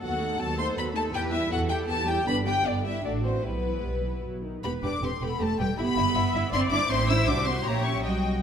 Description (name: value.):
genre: quick classical-period movement for string orchestra.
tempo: 158 BPM.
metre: 3/4.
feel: rubato.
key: E minor.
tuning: A4 = 440 Hz.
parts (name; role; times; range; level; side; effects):
warm symphonic violin section; melody; 0.0-8.4 s; B3 to E6; -31 LUFS; left 6 dB; none.
warm chamber violin section; second line; 0.0-8.4 s; E4 to C6; -31 LUFS; left 3 dB; none.
dark symphonic viola section; accompaniment; 0.0-8.4 s; D3 to E5; -33 LUFS; right 1 dB; none.
dark symphonic double bass section; bass; 0.0-8.4 s; E1 to E2; -30 LUFS; right 2 dB; none.
warm symphonic cello section; bass; 0.0-8.4 s; G3 to B4; -31 LUFS; right 3 dB; none.
room: moderate concert hall reverb, RT60 1.9 s.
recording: none.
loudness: -24 LUFS.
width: side -8 dB against mid.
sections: 0.0-4.6 A section; 4.6-8.4 B section.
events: none.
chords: 0.0 B7/D#; 1.1 Em; 2.3 G; 3.0 Am; 3.4 Em/B; 4.2 B; 4.6 Em; 5.8 Em/G; 6.9 Am; 7.7 A#dim7.